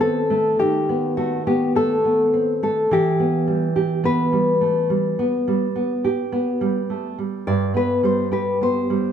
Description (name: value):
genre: romantic duo for nylon-string guitar and classical guitar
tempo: 52 BPM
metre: 4/4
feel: rubato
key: E minor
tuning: A4 = 440 Hz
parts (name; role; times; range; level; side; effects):
- nylon-string guitar; melody; 0.0-9.1 s; F#4 to D5; -20 LUFS; left 2 dB; none
- nylon-string guitar; accompaniment; 0.0-9.1 s; G2 to G4; -21 LUFS; right 2 dB; none
room: wet recital hall reverb, RT60 1.6 s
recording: none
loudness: -18 LUFS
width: side -8 dB against mid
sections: 0.0-9.1 A section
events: none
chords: 0.0 B7/D#; 2.9 Em; 7.5 G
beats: 0.60 1.75 | 2.92 4.05 5.18 6.32 | 7.46 8.60